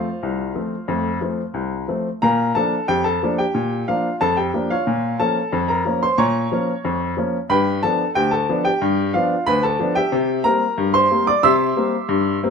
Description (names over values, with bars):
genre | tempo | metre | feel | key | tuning
ragtime piano | 91 BPM | 2/4 | straight | unclear | A4 = 440 Hz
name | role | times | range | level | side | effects
clear upright piano | solo | 0.0-12.5 s | C2 to E6 | -17 LUFS | left 1 dB | none
room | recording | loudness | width
moderate studio reverb, RT60 0.7 s | minimal, uncompressed stereo recording | -17 LUFS | side -6 dB against mid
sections
0.0-2.2 A section; 2.2-12.5 B section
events
none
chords
0.0 F; 2.2 Bb; 4.9 Bbm; 7.5 G7; 10.1 C7